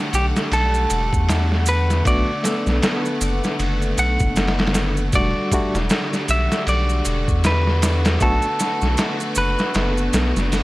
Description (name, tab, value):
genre	trip hop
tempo	78 BPM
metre	4/4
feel	swing 59% on 16ths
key	E minor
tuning	A4 = 439 Hz
part	semi-hollow electric guitar	melody	0.0-10.6 s	G4 to F#5	-24 LUFS	equal	tape echo
part	rich studio string section	sustained chords	0.0-10.6 s	D3 to F#5	-26 LUFS	left 1 dB	none
part	soft dub sub bass	bass	0.1-10.6 s	E1 to E2	-20 LUFS	equal	tube saturation
part	trip hop sampler-style drum kit	drums	0.1-10.6 s	hi-hat, kick drum, ride cymbal, snare drum	-22 LUFS	equal	none
part	maracas	percussion	0.1-10.6 s	none	-30 LUFS	right 4 dB	none
part	barky tine electric piano	accompaniment	2.1-8.5 s	G3 to A4	-26 LUFS	equal	tremolo, tape echo
room	little or no reverb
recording	dry, gritty hardware recording, vinyl crackle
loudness	-17 LUFS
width	side -18 dB against mid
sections	0.0-10.6 A section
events	none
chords	0.0 Em11; 2.1 Bm7; 5.1 Em11; 8.2 Bm7